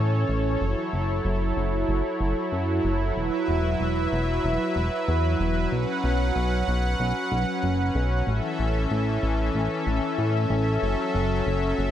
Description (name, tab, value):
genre	synthwave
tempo	94 BPM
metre	4/4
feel	straight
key	unclear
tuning	A4 = 438 Hz
part	warm analog pad	sustained chords	0.0-11.9 s	E3 to F#5	-25 LUFS	equal	chorus
part	chorused synth bass	bass	0.0-11.9 s	E1 to A2	-25 LUFS	equal	none
room	moderate lush hall reverb, RT60 1.8 s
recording	bright 1980s-style digital production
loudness	-22 LUFS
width	side -11 dB against mid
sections	0.0-11.9 A section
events	none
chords	0.0 A; 0.6 F#m7; 3.2 Esus2; 5.7 Bsus2; 8.3 A; 10.8 F#m7